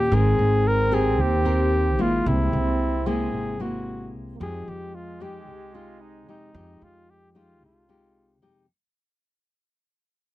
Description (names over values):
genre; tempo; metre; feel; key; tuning
bossa nova; 112 BPM; 4/4; straight; F minor; A4 = 440 Hz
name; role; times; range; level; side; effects
mellow flugelhorn; melody; 0.0-8.4 s; Eb4 to Bb4; -26 LUFS; left 1 dB; none
nylon-string guitar; accompaniment; 0.0-8.7 s; C3 to Bb4; -28 LUFS; left 2 dB; none
upright bass; bass; 0.0-8.7 s; Ab1 to F2; -24 LUFS; right 1 dB; none
breathy trombone; second line; 0.1-8.4 s; Ab3 to C4; -33 LUFS; right 9 dB; none
room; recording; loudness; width
little or no reverb; dry, close 1970s-style studio recording; -20 LUFS; side -16 dB against mid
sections
0.0-8.7 A section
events
fade-out 0.0-8.7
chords
0.1 Abmaj9; 2.3 Caug7; 4.4 Fm9